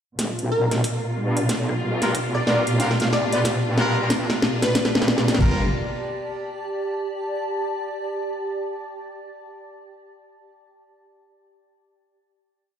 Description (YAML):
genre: glitch hop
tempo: 92 BPM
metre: 4/4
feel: swing 61% on 16ths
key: unclear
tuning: A4 = 440 Hz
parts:
  - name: clear studio string section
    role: sustained chords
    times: 0.2-5.7 s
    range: A#2 to F4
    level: -25 LUFS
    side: equal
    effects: sidechain pumping, low-pass filter
  - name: wobble bass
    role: bass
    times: 0.2-5.7 s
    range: G1 to G2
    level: -28 LUFS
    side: equal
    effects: chorus, overdrive, high-pass filter
  - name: drum and bass drum kit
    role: drums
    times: 0.2-5.6 s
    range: crash cymbal, kick drum, toms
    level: -25 LUFS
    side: equal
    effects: high-pass filter on kick, high-pass filter on toms, high-pass filter on cymbals, high-pass filter on room
  - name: drum and bass drum kit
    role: drums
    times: 0.2-5.5 s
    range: hi-hat, rim click, snare drum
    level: -23 LUFS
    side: equal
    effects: none
  - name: granular cloud pad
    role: texture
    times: 1.1-8.0 s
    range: G4 to A5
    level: -30 LUFS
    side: right 1 dB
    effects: built-in reverb, sidechain pumping
  - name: plucky unison lead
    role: melody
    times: 0.5-5.3 s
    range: A#4 to F5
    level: -26 LUFS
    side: equal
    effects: digital delay
  - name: bright horn section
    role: stabs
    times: 2.0-5.7 s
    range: B3 to B4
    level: -28 LUFS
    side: left 1 dB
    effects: sidechain pumping, low-pass filter, digital delay
room: moderate lush hall reverb, RT60 2.0 s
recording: played on a big sound system in a bare room, stone room reverb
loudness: -20 LUFS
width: side -8 dB against mid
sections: 0.2-5.4 build; 5.4-8.0 final chord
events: build-up 0.2-5.4; drum fill 0.2-5.4; filter sweep on string section 0.2-5.4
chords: 0.2 G7#9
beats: | 0.19 0.84 1.49 2.15 | 2.80 3.45 4.10 4.75 | 5.41 6.06 6.71 7.36